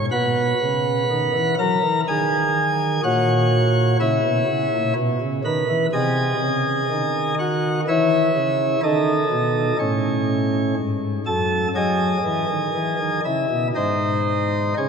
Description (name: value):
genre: classical, chorale-style piece for pipe organ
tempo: 62 BPM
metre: 3/4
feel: rubato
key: unclear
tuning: A4 = 435 Hz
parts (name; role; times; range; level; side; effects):
- pipe organ, sparkling flutes; solo; 0.0-14.9 s; F#2 to B5; -18 LUFS; equal; none
room: wet cathedral reverb, RT60 4.6 s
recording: none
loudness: -18 LUFS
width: side -6 dB against mid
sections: 0.0-14.9 A section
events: none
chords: 0.1 B; 3.0 F#7/A#; 5.0 B; 5.9 G#7/B#; 7.9 C#m/E; 8.8 D#dim; 11.7 G#5/F#; 12.7 C#m; 13.7 G#